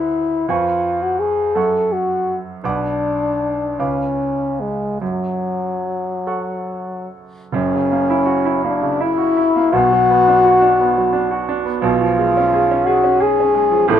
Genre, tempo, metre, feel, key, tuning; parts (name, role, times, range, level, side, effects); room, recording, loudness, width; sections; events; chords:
classical, romantic duo for French horn and grand piano; 45-58 BPM (dotted quarters); 6/8; rubato; F# minor; A4 = 438 Hz
clear French horn; melody; 0.0-14.0 s; F#3 to A4; -16 LUFS; left 2 dB
bright concert grand piano; accompaniment; 0.0-14.0 s; F#1 to D6; -21 LUFS; right 6 dB
light reverb; minimal, uncompressed stereo recording; -15 LUFS; side -9 dB against mid
0.0-7.5 A section; 7.5-14.0 B section
0.5 C#7/E#; 1.6 F#m; 2.6 Bm; 3.8 C#7b9; 5.0 F#m; 7.5 F#7; 9.7 Bm; 11.8 C#7/B